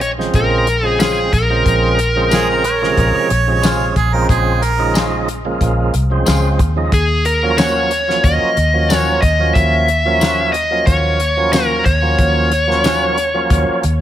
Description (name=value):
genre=straight-eighth soul blues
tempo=91 BPM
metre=4/4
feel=swing 53% on 16ths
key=Bb minor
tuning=A4 = 440 Hz
part: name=dark smooth lead guitar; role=melody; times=0.0-13.8 s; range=Ab4 to E5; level=-16 LUFS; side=left 1 dB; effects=overdrive
part: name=tonewheel organ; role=accompaniment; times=0.0-13.8 s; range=C3 to Eb4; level=-20 LUFS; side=right 3 dB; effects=slow rotary speaker, overdrive
part: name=vintage muted fingered electric bass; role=bass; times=0.0-14.0 s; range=Bb1 to Eb2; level=-18 LUFS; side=equal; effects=none
part: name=warm soul drum kit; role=drums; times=0.0-14.0 s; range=hi-hat, kick drum, snare drum, tambourine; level=-19 LUFS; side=equal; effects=none
part: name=clean electric guitar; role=stabs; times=1.0-13.1 s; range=Eb3 to Gb4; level=-26 LUFS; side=left 4 dB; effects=none
part: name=warm harmonica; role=second line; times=2.3-4.9 s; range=Ab4 to Db5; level=-19 LUFS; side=right 5 dB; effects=none
room=light reverb, studio reverb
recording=none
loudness=-12 LUFS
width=side -12 dB against mid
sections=0.0-14.0 A section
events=none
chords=0.0 Bbm7; 6.9 Ebm7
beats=0.34 1.00 | 1.66 2.31 2.97 3.63 | 4.29 4.95 5.61 6.26 | 6.92 7.58 8.24 8.90 | 9.56 10.22 10.88 11.53 | 12.19 12.85 13.51